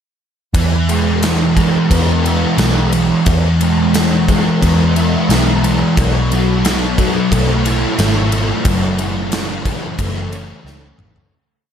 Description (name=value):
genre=rock, shoegaze and dream pop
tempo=89 BPM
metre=4/4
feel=straight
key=E major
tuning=A4 = 442 Hz
part: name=fuzz guitar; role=riff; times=0.5-11.3 s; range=F#2 to E4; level=-15 LUFS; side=equal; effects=distortion, ensemble chorus
part: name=vintage muted picked electric bass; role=bass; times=0.5-11.3 s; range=F#1 to E2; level=-17 LUFS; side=equal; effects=none
part: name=gated 80s drum kit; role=drums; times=0.5-11.3 s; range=kick drum, ride cymbal, snare drum, toms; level=-19 LUFS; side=equal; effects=none
room=wet lush hall reverb, RT60 2.7 s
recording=dreamy mix soaked in reverb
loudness=-12 LUFS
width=side -8 dB against mid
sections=0.5-11.3 verse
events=fade-out 8.7-11.3; drum fill 10.6-11.3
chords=0.5 E; 6.0 B7sus4; 8.7 F#m7